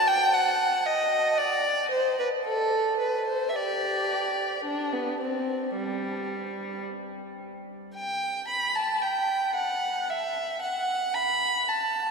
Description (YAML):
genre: classical, baroque-style suite movement for unaccompanied violin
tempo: 56 BPM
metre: 4/4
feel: rubato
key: G major from 7.9 s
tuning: A4 = 440 Hz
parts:
  - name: warm violin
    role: solo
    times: 0.0-12.1 s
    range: G3 to B5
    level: -25 LUFS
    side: equal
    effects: none
room: wet cathedral reverb, RT60 5.9 s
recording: minimal, uncompressed stereo recording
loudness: -24 LUFS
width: side -4 dB against mid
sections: 0.0-12.1 A section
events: none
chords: none